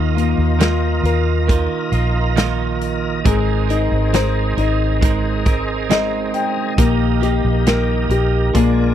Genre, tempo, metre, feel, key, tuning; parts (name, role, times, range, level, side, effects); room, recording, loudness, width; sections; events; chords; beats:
pop ballad; 68 BPM; 4/4; straight; Eb major; A4 = 443 Hz
warm concert grand piano; accompaniment; 0.0-8.9 s; Eb3 to G5; -21 LUFS; left 7 dB
tonewheel organ; sustained chords; 0.0-8.9 s; F4 to Bb5; -26 LUFS; right 2 dB; overdrive, chorus vibrato, slow rotary speaker
direct-recorded clean electric guitar; arpeggios; 0.0-8.9 s; Bb2 to Bb4; -23 LUFS; right 15 dB
vintage muted fingered electric bass; bass; 0.0-8.9 s; Ab1 to Eb2; -19 LUFS; equal
natural country drum kit; drums; 0.2-8.8 s; hi-hat, kick drum, snare drum; -18 LUFS; equal
little or no reverb; dry, close 1970s-style studio recording; -15 LUFS; side -10 dB against mid
0.0-8.9 A section
grand piano fill 5.5-6.8
0.0 Ebsus2; 3.2 Abadd9; 6.8 Eb/Bb
0.60 1.48 2.37 | 3.25 4.13 5.01 5.90 | 6.78 7.66 8.54